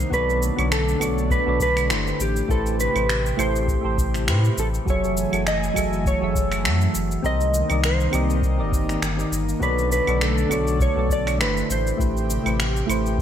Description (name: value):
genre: sunset chillout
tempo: 101 BPM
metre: 4/4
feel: swing 54% on 16ths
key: unclear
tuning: A4 = 440 Hz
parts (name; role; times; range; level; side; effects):
- mellow electric guitar; melody; 0.0-12.3 s; G4 to D#5; -25 LUFS; equal; analog chorus, digital delay
- airy breathy pad; sustained chords; 0.0-13.2 s; C3 to G#5; -28 LUFS; equal; chorus
- warm sub bass; bass; 0.0-13.2 s; F#1 to A2; -24 LUFS; equal; none
- electronic cabasa, claves and finger snaps; drums; 0.0-13.2 s; none; -28 LUFS; right 1 dB; small room reverb, gated reverb
- soft electric-piano-like synth keys; accompaniment; 0.1-13.2 s; F#3 to E5; -28 LUFS; moving between left 2 dB and right 5 dB; chorus, auto-pan, digital delay
- electronic kick drum; drums; 0.1-13.2 s; none; -25 LUFS; equal; small room reverb
room: moderate plate reverb, RT60 1.9 s, digital ambience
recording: bright 1980s-style digital production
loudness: -19 LUFS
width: side -9 dB against mid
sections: 0.0-13.2 A section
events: none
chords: 0.1 Bm9; 2.2 Am9; 4.9 F#m9; 7.2 Cm9; 9.6 Bm9; 11.7 Am9